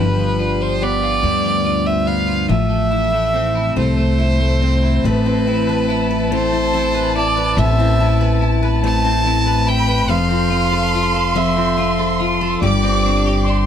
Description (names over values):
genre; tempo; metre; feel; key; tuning
six-eight pop ballad; 47 BPM (dotted quarters); 6/8; straight; A minor; A4 = 439 Hz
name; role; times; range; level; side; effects
clear violin; melody; 0.0-13.5 s; B4 to A5; -20 LUFS; right 1 dB; none
twelve-string electric guitar; accompaniment; 0.0-13.7 s; G2 to B4; -20 LUFS; right 1 dB; double-tracked left and right
picked steel-string acoustic guitar; arpeggios; 0.0-13.7 s; F3 to B4; -24 LUFS; left 10 dB; none
upright bass; bass; 0.0-13.7 s; F1 to D2; -20 LUFS; equal; none
warm studio violin section; second line; 5.0-13.7 s; A5 to D6; -23 LUFS; equal; none
room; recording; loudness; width
light reverb; dry, close 1970s-style studio recording; -14 LUFS; side -9 dB against mid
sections
0.0-5.0 A section; 5.0-13.7 B section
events
none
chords
0.0 G7; 2.5 Fmaj7/A; 5.0 Amadd9; 10.1 F; 12.6 Csus2/G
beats
1.23 | 2.49 3.77 | 5.04 6.32 | 7.58 8.83 | 10.09 11.35 | 12.62